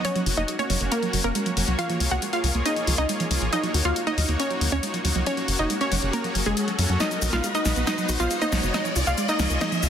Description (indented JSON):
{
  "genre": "uplifting trance",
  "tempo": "138 BPM",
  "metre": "4/4",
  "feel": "straight",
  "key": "F# major",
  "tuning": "A4 = 440 Hz",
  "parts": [
    { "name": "wide unison pluck", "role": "melody", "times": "0.0-9.9 s", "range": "G#3 to F#5", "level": "-26 LUFS", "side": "equal", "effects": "cassette tape, digital delay" },
    { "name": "wide unison pluck", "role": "arpeggios", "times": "0.0-9.9 s", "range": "E#3 to F#4", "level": "-31 LUFS", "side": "right 3 dB", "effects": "cassette tape, digital delay" },
    { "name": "house drum kit", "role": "drums", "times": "0.0-9.9 s", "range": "hi-hat, shaker, snare drum", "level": "-29 LUFS", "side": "left 2 dB", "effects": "none" },
    { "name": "swell and riser", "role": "sound effects", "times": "0.0-9.9 s", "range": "none", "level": "-34 LUFS", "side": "left 1 dB", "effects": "none" },
    { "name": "tight sequencer bass", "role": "bass", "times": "0.3-9.9 s", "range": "F#1 to F#2", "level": "-25 LUFS", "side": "equal", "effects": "none" }
  ],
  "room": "light reverb, digital ambience",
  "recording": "dense, heavily limited modern master",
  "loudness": "-21 LUFS",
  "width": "side -8 dB against mid",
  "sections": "0.0-9.9 A section",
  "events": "build-up 0.0-9.9; riser 0.0-9.9; filter sweep on synth arpeggio sound 0.0-9.9; drum fill 7.0-9.9",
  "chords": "0.0 F#; 1.8 C#6; 3.5 D#m7; 5.3 F#; 7.0 B; 8.7 C#6"
}